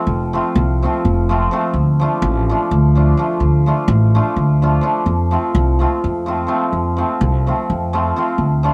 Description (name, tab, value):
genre	balkan folk, Balkan wedding band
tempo	253 BPM (eighths)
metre	7/8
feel	straight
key	F major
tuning	A4 = 437 Hz
part	cimbalom	accompaniment	0.0-8.7 s	F3 to F4	-21 LUFS	equal	cassette tape, plate reverb
part	upright bass	bass	0.1-8.7 s	F1 to F2	-18 LUFS	equal	none
room	light reverb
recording	home recording on cassette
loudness	-16 LUFS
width	mono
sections	0.0-8.7 A section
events	none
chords	0.0 F; 1.7 Dm; 5.1 F